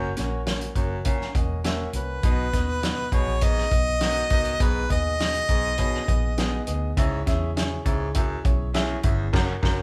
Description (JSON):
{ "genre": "uptempo 1960s-style soul", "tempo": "101 BPM", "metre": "4/4", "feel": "straight", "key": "unclear", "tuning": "A4 = 440 Hz", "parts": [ { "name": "warm concert grand piano", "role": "accompaniment", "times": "0.0-9.8 s", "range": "B2 to F#5", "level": "-33 LUFS", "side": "equal", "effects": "none" }, { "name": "raspy baritone saxophone", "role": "riff", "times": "0.0-9.8 s", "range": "E2 to B2", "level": "-36 LUFS", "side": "equal", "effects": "none" }, { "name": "vintage muted fingered electric bass", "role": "bass", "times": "0.0-9.8 s", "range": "E1 to E2", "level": "-30 LUFS", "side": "equal", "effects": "none" }, { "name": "warm soul drum kit", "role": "drums", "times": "0.2-9.8 s", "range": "crash cymbal, hi-hat, kick drum, snare drum", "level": "-28 LUFS", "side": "equal", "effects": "none" }, { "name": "warm harmonica", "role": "melody", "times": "2.0-6.6 s", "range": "B4 to D#5", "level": "-28 LUFS", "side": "equal", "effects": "none" } ], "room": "moderate large studio reverb, RT60 0.9 s", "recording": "band playing live in one room", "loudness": "-24 LUFS", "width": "mono", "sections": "0.0-9.8 A section", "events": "band accent 9.3-9.8", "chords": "0.0 F#; 2.2 B; 4.6 G#m/B; 7.0 C#m" }